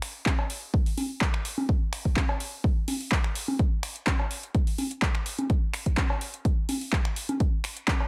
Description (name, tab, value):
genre	house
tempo	126 BPM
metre	4/4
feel	straight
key	none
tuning	none
part	big-room dance drum kit	drums	0.0-8.0 s	finger snaps, handclaps, hi-hat	-34 LUFS	equal	overdrive, sidechain pumping on hats
part	electronic kick drum	drums	0.3-8.0 s	none	-28 LUFS	equal	overdrive
part	congas and cowbell	percussion	0.3-8.1 s	none	-34 LUFS	equal	sidechain pumping on perc
room	little or no reverb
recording	none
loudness	-28 LUFS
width	mono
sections	0.0-8.1 A section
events	none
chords	none